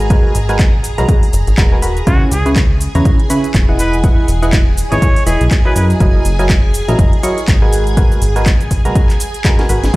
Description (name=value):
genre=piano house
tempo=122 BPM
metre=4/4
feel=swing 58% on 16ths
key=unclear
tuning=A4 = 439 Hz
part: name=string machine, violins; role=sustained chords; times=0.0-10.0 s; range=G#4 to A#5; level=-25 LUFS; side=equal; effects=ensemble chorus, sidechain pumping
part: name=barking FM electric piano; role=riff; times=0.0-10.0 s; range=C#3 to C#6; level=-18 LUFS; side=right 1 dB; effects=chorus, cassette tape, sidechain pumping, dub echo
part: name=plucky analog bass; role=bass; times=0.0-10.0 s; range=D#1 to F#2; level=-15 LUFS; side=equal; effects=sidechain pumping
part: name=house drum kit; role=drums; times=0.0-10.0 s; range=cabasa, handclaps, hi-hat, snare drum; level=-22 LUFS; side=equal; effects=overdrive
part: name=electronic kick drum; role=drums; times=0.1-10.0 s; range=none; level=-12 LUFS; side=equal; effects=none
part: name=trumpet with straight mute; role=melody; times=2.1-5.8, 9.9-10.0 s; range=F#4 to C#5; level=-22 LUFS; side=equal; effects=dub echo
room=digital ambience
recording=played on a big sound system in a bare room, large studio reverb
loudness=-10 LUFS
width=side -20 dB against mid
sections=0.0-10.0 A section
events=drum fill 9.4-9.9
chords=0.0 G#m9; 2.1 C#m7; 3.8 Emaj9; 5.8 F#13; 7.7 G#m9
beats=| 0.10 0.59 1.09 1.58 | 2.07 2.56 3.05 3.54 | 4.04 4.53 5.02 5.51 | 6.00 6.50 6.99 7.48 | 7.97 8.46 8.96 9.45 | 9.94